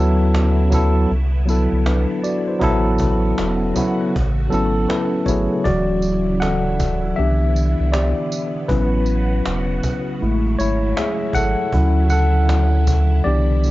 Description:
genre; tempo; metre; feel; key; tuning
lo-fi hip hop; 79 BPM; 4/4; swing 61% on 16ths; unclear; A4 = 441 Hz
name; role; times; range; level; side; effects
bright tine electric piano; accompaniment; 0.0-13.7 s; C#3 to F#5; -19 LUFS; left 1 dB; medium stereo tremolo, cassette tape, low-pass filter
string machine, full ensemble; sustained chords; 0.0-13.7 s; B2 to F#4; -28 LUFS; right 1 dB; phaser, ensemble chorus, low-pass filter
warm sub bass; bass; 0.0-13.7 s; D1 to D2; -18 LUFS; equal; none
cajon; drums; 0.3-13.7 s; none; -26 LUFS; equal; none
tambourine; percussion; 0.7-13.7 s; none; -35 LUFS; right 5 dB; none
room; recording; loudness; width
light reverb; dark, warm production, nothing above 7.6 kHz; -16 LUFS; side -17 dB against mid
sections
0.0-5.7 A section; 5.7-13.7 B section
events
tine electric piano solo 5.7-13.7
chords
0.0 Dmaj9; 1.1 Cmaj9; 2.6 A69; 4.1 A6; 5.7 Dmaj9; 7.2 Cmaj9; 8.7 A69; 10.2 F#m9; 11.7 Dmaj9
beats
0.34 1.10 1.86 | 2.62 3.38 4.13 4.89 | 5.65 6.41 7.17 7.93 | 8.69 9.45 10.21 10.97 | 11.73 12.49 13.25

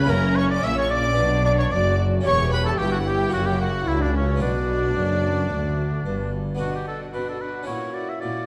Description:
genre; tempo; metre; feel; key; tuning
classical, baroque-style concerto movement with solo episodes; 111 BPM; 4/4; straight; B minor; A4 = 440 Hz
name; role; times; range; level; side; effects
clear chamber violin section; melody; 0.0-8.5 s; C#5 to E6; -34 LUFS; equal; none
clear oboe; melody; 0.0-8.5 s; C#4 to E5; -29 LUFS; equal; none
rich chamber violin section; second line; 0.0-8.5 s; C#4 to E5; -31 LUFS; equal; none
harpsichord; accompaniment; 0.0-8.5 s; C#2 to G4; -34 LUFS; equal; none
rich chamber viola section; accompaniment; 0.0-8.5 s; C#4 to G4; -32 LUFS; equal; none
clear chamber double bass section; bass; 0.0-6.6 s; E1 to D2; -28 LUFS; equal; none
warm chamber cello section; bass; 0.0-8.5 s; C#2 to B2; -30 LUFS; equal; none
room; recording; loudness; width
wet concert hall reverb, RT60 2.0 s; dark, warm production; -23 LUFS; mono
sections
0.0-6.6 A section; 6.6-8.5 B section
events
none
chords
0.1 F#7; 1.2 Bm; 2.2 C#dim/E; 3.3 F#7; 4.4 Bm; 7.7 F#7/A#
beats
| 0.10 0.64 1.17 1.71 | 2.25 2.79 3.33 3.87 | 4.42 4.96 5.51 6.05 | 6.60 7.14 7.68 8.22

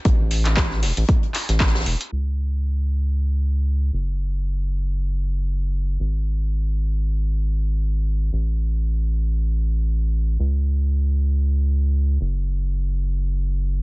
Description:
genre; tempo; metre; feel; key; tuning
deep house; 116 BPM; 4/4; swing 56% on 16ths; unclear; A4 = 442 Hz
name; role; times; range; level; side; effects
open jazz drum kit; drums; 0.0-2.0 s; hi-hat, snare drum; -32 LUFS; left 1 dB; sidechain pumping on hats, high-pass filter on hats, high-pass filter on snare, high-pass filter on room
round analog bass; bass; 0.1-13.8 s; E1 to C#2; -20 LUFS; equal; sidechain pumping
deep house drum kit; drums; 0.1-2.2 s; crash cymbal, handclaps, hi-hat; -25 LUFS; equal; overdrive
electronic kick drum; drums; 0.1-1.7 s; none; -18 LUFS; equal; overdrive
room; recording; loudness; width
little or no reverb; low-pass filter, nothing above 7.9 kHz; -20 LUFS; side -25 dB against mid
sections
0.0-2.1 A section; 2.1-13.8 B section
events
filter sweep 2.1-13.8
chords
none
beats
| 0.05 0.57 1.09 1.60 | 2.12 2.64 3.16 3.67 | 4.19 4.71 5.22 5.74 | 6.26 6.78 7.29 7.81 | 8.33 8.85 9.36 9.88 | 10.40 10.91 11.43 11.95 | 12.47 12.98 13.50

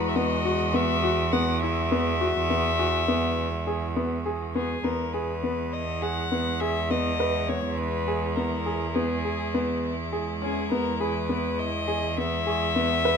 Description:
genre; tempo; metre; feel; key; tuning
contemporary instrumental, chamber music in an uneven meter; 102 BPM; 5/4; straight; E lydian; A4 = 440 Hz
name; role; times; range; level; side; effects
dark violin; melody; 0.0-13.2 s; G#4 to F#5; -29 LUFS; left 6 dB; none
rich chamber string section; sustained chords; 0.0-13.2 s; E3 to F#4; -33 LUFS; equal; none
bright cello; bass; 0.0-13.2 s; E2; -29 LUFS; right 4 dB; none
celesta; texture; 0.0-3.9, 11.0-13.2 s; E4 to C#6; -38 LUFS; left 6 dB; none
clear concert grand piano; arpeggios; 0.2-13.2 s; B3 to B4; -28 LUFS; left 1 dB; none
room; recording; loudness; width
light reverb; close, detailed microphones; -24 LUFS; side -6 dB against mid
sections
0.0-4.8 A section; 4.8-13.2 B section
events
none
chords
0.0 Eadd9; 4.8 E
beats
0.16 0.74 1.33 | 1.91 2.50 3.08 3.67 4.26 | 4.84 5.43 6.02 6.60 7.19 | 7.78 8.36 8.95 9.54 10.12 | 10.71 11.29 11.88 12.46 13.05

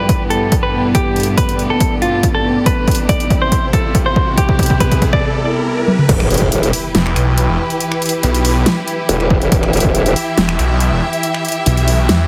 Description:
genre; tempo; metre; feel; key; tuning
heavy wobble dubstep; 140 BPM; 4/4; half-time; E minor; A4 = 441 Hz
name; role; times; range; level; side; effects
clean electric guitar; melody; 0.0-5.2 s; F4 to D5; -21 LUFS; equal; digital delay
clear studio string section; sustained chords; 0.0-12.3 s; C2 to E5; -24 LUFS; equal; sidechain pumping
riser, swell and impact; sound effects; 2.5-7.8 s; none; -27 LUFS; equal; none
deep dark ambient pad; texture; 0.0-5.2 s; G2 to G5; -24 LUFS; equal; chorus, built-in reverb, sidechain pumping
dubstep drum kit; drums; 0.1-12.2 s; crash cymbal, finger snaps, hi-hat, snare drum, toms; -21 LUFS; equal; overdrive
electronic kick drum; drums; 0.1-6.5, 9.3-9.9 s; none; -18 LUFS; equal; overdrive
growl bass; bass; 6.1-10.1 s; E1; -16 LUFS; equal; chorus, overdrive
snarling distorted saw bass; bass; 6.9-12.3 s; E1 to E2; -16 LUFS; equal; distortion, overdrive
room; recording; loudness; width
moderate lush hall reverb, RT60 1.9 s; heavily compressed radio sound; -15 LUFS; mono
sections
0.0-6.1 A section; 6.1-12.3 B section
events
build-up 0.0-6.1; drum fill 0.0-5.2, 5.9; riser 2.5-6.1; swell 5.2-6.1; drop 6.1-12.3; impact 6.1-7.8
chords
0.0 G; 2.7 C; 6.1 Em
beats
0.09 0.52 | 0.95 1.38 1.80 2.23 | 2.66 3.09 3.52 3.95 | 4.38 4.80 5.23 5.66 | 6.09 6.52 6.95 7.38 | 7.80 8.23 8.66 9.09 | 9.52 9.95 10.38 10.80 | 11.23 11.66 12.09

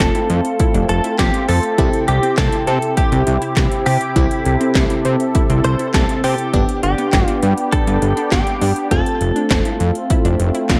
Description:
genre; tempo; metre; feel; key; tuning
synth-pop; 101 BPM; 4/4; straight; C major; A4 = 440 Hz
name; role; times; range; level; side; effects
direct-recorded clean electric guitar; melody; 0.0-10.7 s; G4 to C5; -24 LUFS; equal; analog chorus, dub echo
FM electric piano; accompaniment; 0.0-10.8 s; B3 to A4; -28 LUFS; equal; none
sweeping resonant pad; sustained chords; 0.0-10.8 s; C3 to A4; -25 LUFS; equal; chorus
unison pluck; arpeggios; 0.0-10.8 s; B3 to G4; -29 LUFS; equal; none
fat analog bass; bass; 0.0-10.8 s; F1 to C3; -20 LUFS; equal; none
80s electronic pad drums; drums; 0.0-10.8 s; handclaps, hi-hat, kick drum, snare drum; -21 LUFS; equal; none
room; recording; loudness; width
light reverb; echo-heavy mix; -16 LUFS; mono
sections
0.0-10.8 A section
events
none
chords
0.0 F; 1.8 C; 6.5 G; 8.9 F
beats
0.00 0.59 1.19 | 1.78 2.38 2.97 3.57 | 4.16 4.75 5.35 5.94 | 6.54 7.13 7.72 8.32 | 8.91 9.51 10.10 10.69

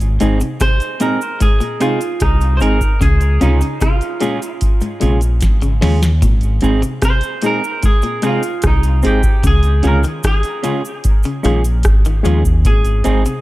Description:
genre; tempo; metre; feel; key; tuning
roots reggae; 75 BPM; 4/4; straight; Ab major; A4 = 440 Hz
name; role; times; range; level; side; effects
deep dub fingered electric bass; bass; 0.0-13.2 s; Ab1 to Eb2; -14 LUFS; equal; none
booming analog drum machine; drums; 0.0-13.4 s; hi-hat, kick drum, rim click, snare drum; -15 LUFS; equal; none
cabasa; percussion; 0.0-13.4 s; none; -34 LUFS; right 5 dB; none
clean electric guitar; accompaniment; 0.2-13.2 s; C4 to Ab4; -23 LUFS; right 4 dB; dub echo
electric guitar at the edge of break-up; arpeggios; 0.2-13.4 s; Ab2 to F3; -24 LUFS; left 4 dB; none
reed electric piano; stabs; 0.2-13.2 s; Ab3 to Ab4; -23 LUFS; left 4 dB; fast tremolo
semi-hollow electric guitar; melody; 0.6-13.4 s; Eb4 to C5; -22 LUFS; right 2 dB; dub echo
room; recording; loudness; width
little or no reverb; none; -12 LUFS; side -17 dB against mid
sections
0.0-13.4 A section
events
drum fill 5.4-6.2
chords
0.0 Ab; 3.0 Db; 6.2 Ab; 9.4 Db; 12.7 Ab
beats
0.61 1.41 2.21 | 3.01 3.82 4.62 5.42 | 6.22 7.03 7.83 8.63 | 9.43 10.24 11.04 11.85 | 12.65

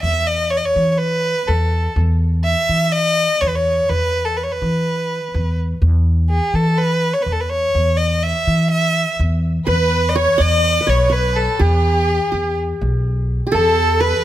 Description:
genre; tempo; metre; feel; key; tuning
arabic; 124 BPM; 4/4; straight; E maqam rast; A4 = 440 Hz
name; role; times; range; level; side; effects
rich violin; melody; 0.0-14.2 s; G4+46c to E5; -18 LUFS; equal; none
upright bass; bass; 0.0-14.1 s; B1 to E3; -18 LUFS; equal; none
qanun; second line; 9.7-14.2 s; G#4-50c to D5+50c; -22 LUFS; right 2 dB; none
rich studio violin section; second line; 9.7-14.2 s; G#4-50c to D5+50c; -24 LUFS; left 2 dB; none
room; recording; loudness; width
little or no reverb; close, detailed microphones; -15 LUFS; side -13 dB against mid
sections
0.0-9.7 A section; 9.7-14.2 B section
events
none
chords
none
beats
| 0.03 0.51 1.00 1.48 | 1.96 2.44 2.92 3.41 | 3.89 4.37 4.85 5.33 | 5.82 6.30 6.78 7.26 | 7.74 8.23 8.71 9.19 | 9.67 10.15 10.63 11.12 | 11.60 12.08 12.56 13.05 | 13.53 14.01

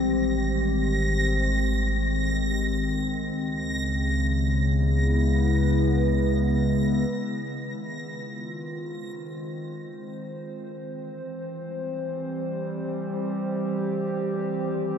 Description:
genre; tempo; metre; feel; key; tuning
ambient; free time; none; none; unclear; A4 = 440 Hz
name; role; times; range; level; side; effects
warbly tape-like pad; sustained chords; 0.0-15.0 s; Db3 to C5; -26 LUFS; left 1 dB; chorus, built-in reverb, shimmer reverb
warm sub bass; bass; 0.0-7.1 s; Ab1 to Db2; -26 LUFS; equal; none
backwards swelling texture; texture; 0.0-7.1 s; Bb6; -33 LUFS; right 2 dB; built-in reverb, shimmer reverb
room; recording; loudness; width
wet huge ambient reverb, RT60 7.3 s; in a vast, echoing space; -24 LUFS; side -8 dB against mid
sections
0.0-7.1 A section; 7.1-15.0 B section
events
fade-in on ambient pad 7.1-15.0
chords
0.0 Abmaj7; 3.4 Dbm7; 7.1 Fm7; 10.8 C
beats
free time

